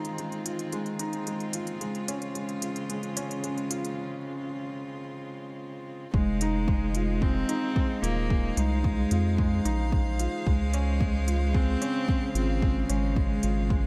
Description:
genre	piano and strings electronica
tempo	111 BPM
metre	4/4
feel	straight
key	unclear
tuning	A4 = 440 Hz
part	dark string quartet	sustained chords	0.0-13.9 s	Db3 to F5	-39 LUFS	equal	none
part	felt-muted upright piano	riff	0.0-13.9 s	Ab3 to F4	-36 LUFS	equal	digital delay
part	electronic hi-hat	drums	0.0-13.5 s	none	-38 LUFS	equal	overdrive, high-pass filter on hats, high-pass filter on room
part	warm cello	melody	6.1-13.9 s	Ab3 to C4	-33 LUFS	equal	none
part	round analog bass	bass	6.1-13.9 s	Eb1 to F2	-30 LUFS	equal	sidechain pumping
part	electronic kick drum	drums	6.1-13.8 s	none	-29 LUFS	equal	overdrive
room	light reverb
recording	none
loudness	-28 LUFS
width	mono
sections	0.0-6.1 A section; 6.1-13.9 B section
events	build-up 0.0-6.1; break 4.0-6.1; drop 6.1-13.9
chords	0.0 Fm7; 1.8 Dbmaj7; 6.1 Fm7; 10.5 Dbmaj7

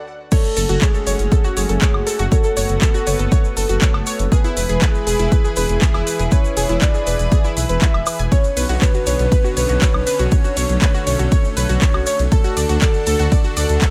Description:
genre	progressive house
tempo	120 BPM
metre	4/4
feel	straight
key	F# minor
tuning	A4 = 443 Hz
part	soft octave-layered synth lead	melody	0.3-13.9 s	G#4 to E5	-26 LUFS	equal	chorus, phaser, delay
part	lush unison pad	sustained chords	0.3-13.9 s	D3 to B4	-30 LUFS	equal	chorus, sidechain pumping
part	analog pluck	arpeggios	0.3-13.9 s	E4 to B5	-28 LUFS	equal	chorus, sidechain pumping, delay
part	electronic kick drum	drums	0.3-13.9 s	none	-17 LUFS	equal	overdrive, high-pass filter on kick, small room reverb
part	house drum kit	drums	0.3-13.9 s	crash cymbal, handclaps, hi-hat, ride cymbal, woodblock	-28 LUFS	equal	overdrive, sidechain pumping on hats, high-pass filter on hats, small room reverb, high-pass filter on snare, sidechain pumping on perc, high-pass filter on perc, sidechain pumping on cymbals, high-pass filter on cymbals
part	tube shaker	percussion	0.3-13.9 s	none	-33 LUFS	equal	none
part	dark detuned saw bass	bass	0.6-13.8 s	E1 to D2	-22 LUFS	equal	sidechain pumping
room	little or no reverb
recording	none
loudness	-17 LUFS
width	mono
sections	0.3-13.9 A section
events	stop 0.0-0.3; drop 0.3-13.9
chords	0.3 F#m; 4.3 E; 8.3 Bmadd9; 12.3 D

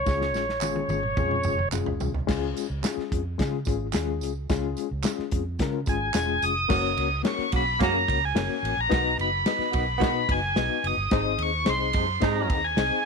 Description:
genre	uptempo 1960s-style soul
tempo	109 BPM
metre	4/4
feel	straight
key	unclear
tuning	A4 = 440 Hz
part	tonewheel organ	melody	0.0-1.7, 5.9-13.1 s	C#5 to D#6	-26 LUFS	right 1 dB	slow rotary speaker
part	vintage muted fingered electric bass	bass	0.0-12.9 s	E1 to C#3	-31 LUFS	right 1 dB	none
part	reed electric piano	accompaniment	0.1-13.1 s	G#3 to D#5	-30 LUFS	left 14 dB	fast tremolo
part	natural country drum kit	drums	0.1-12.9 s	crash cymbal, hi-hat, kick drum, ride cymbal, snare drum, toms	-29 LUFS	right 1 dB	none
part	tambourine and handclaps	percussion	0.1-6.6 s	none	-37 LUFS	right 16 dB	none
part	mellow saxophone section	second line	6.7-12.6 s	B#2 to F#4	-30 LUFS	right 15 dB	none
room	studio reverb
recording	1960s-style stereo with parts hard left and right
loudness	-23 LUFS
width	side -4 dB against mid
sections	0.0-2.3 A section; 2.3-6.7 B section; 6.7-13.1 C section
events	drum fill 0.1-2.3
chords	0.1 C#; 6.7 F#; 8.9 B; 11.1 G#

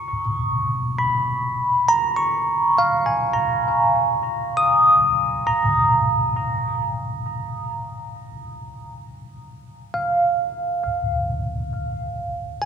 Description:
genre	ambient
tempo	67 BPM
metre	3/4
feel	straight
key	Db mixolydian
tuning	A4 = 439 Hz
part	bell-like tine electric piano	solo	0.0-12.7 s	F5 to Eb6	-19 LUFS	equal	phaser, analog delay
room	wet plate reverb, RT60 2.8 s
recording	echo-heavy mix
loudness	-18 LUFS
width	side -7 dB against mid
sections	0.1-12.7 A section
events	none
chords	0.1 Db13; 5.5 Fsus4; 10.8 N.C.

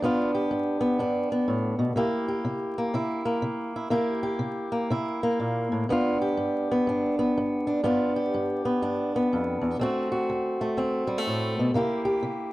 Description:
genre	blues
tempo	123 BPM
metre	4/4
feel	swing 63% on 8ths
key	unclear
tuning	A4 = 440 Hz
part	fingerpicked swing-style acoustic guitar	solo	0.0-12.5 s	D2 to G4	-24 LUFS	equal	none
room	small room ambience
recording	dry, close 1970s-style studio recording, vinyl crackle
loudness	-24 LUFS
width	side -17 dB against mid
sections	0.0-12.5 A section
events	none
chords	0.0 G7; 2.0 C7; 5.9 G7; 9.8 D7; 11.7 C7

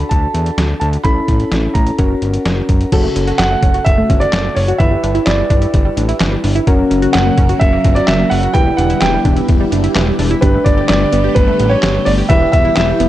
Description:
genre	synth-pop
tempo	128 BPM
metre	4/4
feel	straight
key	unclear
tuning	A4 = 440 Hz
part	warm concert grand piano	melody	0.0-13.1 s	B4 to B5	-18 LUFS	right 2 dB	shimmer reverb
part	soft electric-piano-like synth keys	accompaniment	0.0-13.1 s	C#3 to B4	-20 LUFS	left 2 dB	chorus, shimmer reverb
part	fat analog bass	bass	0.0-13.1 s	E1 to E2	-17 LUFS	equal	none
part	trip hop sampler-style drum kit	drums	0.1-13.1 s	crash cymbal, handclaps, hi-hat, kick drum, snare drum	-15 LUFS	equal	none
part	analog pluck	arpeggios	2.9-13.1 s	E3 to G4	-21 LUFS	right 1 dB	chorus, phaser, analog delay, shimmer reverb
part	phased string machine	sustained chords	6.7-13.1 s	B2 to A#4	-20 LUFS	left 1 dB	ensemble chorus, phaser, shimmer reverb
room	moderate digital room reverb, RT60 1.0 s, digital ambience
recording	dark, warm production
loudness	-11 LUFS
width	side -14 dB against mid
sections	0.0-2.9 A section; 2.9-10.4 B section; 10.4-13.1 C section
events	none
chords	0.0 D; 1.0 A; 2.0 F#; 2.9 F#m; 4.8 Em7/G; 6.7 F#; 8.5 Em7; 10.4 Gadd9; 12.3 Em

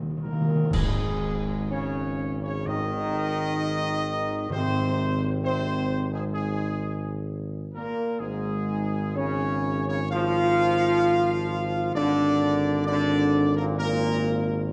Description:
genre	classical, ceremonial fanfare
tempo	65 BPM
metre	4/4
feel	straight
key	Ab major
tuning	A4 = 438 Hz
part	clear trombone section	sustained chords	0.0-14.7 s	Ab2 to F3	-35 LUFS	equal	none
part	dark French horn section	sustained chords	0.0-14.7 s	Ab3 to F4	-30 LUFS	equal	none
part	mellow tuba	bass	0.0-14.7 s	Ab1 to Eb2	-31 LUFS	equal	none
part	timpani	percussion	0.0-5.8 s	Ab2 to Eb3	-32 LUFS	equal	none
part	mellow trumpet section	melody	0.2-14.7 s	Ab4 to F5	-32 LUFS	equal	none
part	clash cymbals and concert bass drum	percussion	0.7-2.6 s	none	-34 LUFS	equal	none
room	wet recital hall reverb, RT60 1.6 s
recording	dark, warm production, nothing above 10.3 kHz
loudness	-26 LUFS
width	mono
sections	0.7-14.7 A section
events	timpani fill 0.0-0.7; band accent 0.7-1.7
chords	0.0 Eb5; 0.7 Ab5

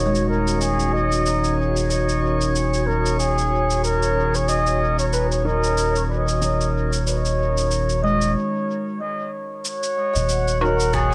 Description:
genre	ambient dub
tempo	93 BPM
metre	4/4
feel	swing 57% on 16ths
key	Eb minor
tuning	A4 = 436 Hz
part	trumpet with bucket mute	melody	0.0-11.1 s	Ab4 to Eb5	-25 LUFS	equal	cassette tape, analog delay
part	airy breathy pad	sustained chords	0.0-8.4 s	Eb3 to Eb5	-32 LUFS	equal	chorus, cassette tape
part	kalimba	arpeggios	0.0-2.2, 8.0-11.1 s	Ab3 to Eb5	-32 LUFS	equal	cassette tape, analog delay
part	soft dub sub bass	bass	0.0-11.1 s	Eb1	-25 LUFS	equal	tube saturation
part	drifting glass-harmonics texture	texture	0.0-11.1 s	Eb4 to Gb5	-30 LUFS	equal	chorus, built-in reverb, cassette tape
part	electronic cabasa and rim click	drums	0.2-11.1 s	none	-32 LUFS	equal	studio reverb, cassette tape
part	filtered dub chord stab	stabs	0.3-6.6, 10.6-10.8 s	Eb4 to Db5	-31 LUFS	equal	phaser, cassette tape, dub echo
part	electronic kick drum	drums	10.9-11.1 s	none	-30 LUFS	equal	none
room	light reverb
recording	home recording on cassette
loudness	-21 LUFS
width	mono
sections	0.0-9.6 A section; 9.6-11.1 B section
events	break 8.4-9.6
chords	0.0 Ebm7

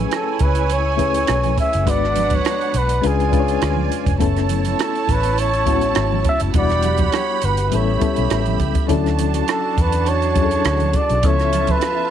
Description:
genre	lush 1970s-style soul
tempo	102 BPM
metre	4/4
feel	swing 54% on 16ths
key	A major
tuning	A4 = 440 Hz
part	warm studio string section	second line	0.0-12.1 s	D4 to B5	-24 LUFS	right 12 dB	none
part	reed electric piano	accompaniment	0.0-12.1 s	E3 to C#5	-23 LUFS	left 11 dB	fast tremolo
part	vintage muted fingered electric bass	bass	0.0-11.8 s	E1 to E2	-21 LUFS	equal	none
part	breathy flugelhorn	melody	0.1-12.1 s	G#4 to E5	-21 LUFS	equal	none
part	compact cocktail drum kit	drums	0.1-12.0 s	hi-hat, kick drum, rim click	-22 LUFS	right 2 dB	none
part	congas	percussion	0.4-12.0 s	none	-31 LUFS	right 8 dB	none
room	studio ambience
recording	1960s-style stereo with parts hard left and right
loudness	-16 LUFS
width	side -10 dB against mid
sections	0.0-12.1 A section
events	none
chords	0.0 Amaj9; 1.9 G#m7b5; 3.0 C#7b9; 4.2 F#m11; 6.5 Em9; 7.7 A7; 8.9 Dmaj7; 11.2 C#7alt

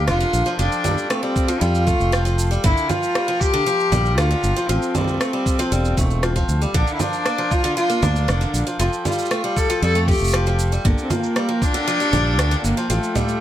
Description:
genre	folktronica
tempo	117 BPM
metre	4/4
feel	straight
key	F major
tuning	A4 = 442 Hz
part	rich cello	melody	0.0-13.4 s	A3 to A4	-22 LUFS	left 1 dB	digital delay
part	pedal harmonium	sustained chords	0.0-13.4 s	D4 to G5	-31 LUFS	right 1 dB	none
part	picked steel-string acoustic guitar	arpeggios	0.0-13.4 s	D3 to Bb3	-25 LUFS	equal	digital delay
part	fingered electric bass	bass	0.0-13.0 s	E1 to F2	-20 LUFS	equal	none
part	electronic rim click, shaker and congas	drums	0.1-13.4 s	none	-26 LUFS	right 2 dB	none
part	electronic kick drum	drums	1.4-11.7 s	none	-21 LUFS	equal	none
room	moderate studio reverb, RT60 0.6 s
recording	none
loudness	-17 LUFS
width	side -12 dB against mid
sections	0.0-13.4 A section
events	none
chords	0.0 Bb; 0.6 Fadd9; 2.6 Gm7; 4.7 Fadd9; 6.7 Bb; 8.8 Fadd9; 10.8 Gm7; 12.9 Fadd9/A

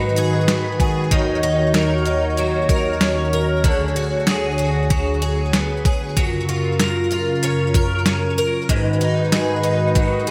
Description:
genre	dream pop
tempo	95 BPM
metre	4/4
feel	straight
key	F# major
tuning	A4 = 441 Hz
part	hollow soft pad	sustained chords	0.0-10.3 s	D2 to C#5	-22 LUFS	equal	chorus
part	picked twelve-string acoustic guitar	arpeggios	0.0-10.3 s	G#2 to A#4	-25 LUFS	equal	ensemble chorus, digital delay
part	clean 12-bit digital drum machine	drums	0.2-10.3 s	hi-hat, kick drum, snare drum	-22 LUFS	equal	overdrive
room	moderate plate reverb, RT60 1.5 s, digital ambience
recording	bright 1980s-style digital production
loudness	-19 LUFS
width	mono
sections	0.0-10.3 A section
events	none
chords	0.0 G#m7; 1.1 D#m7; 3.6 Bm6/D; 6.2 F#maj7; 8.7 G#m7

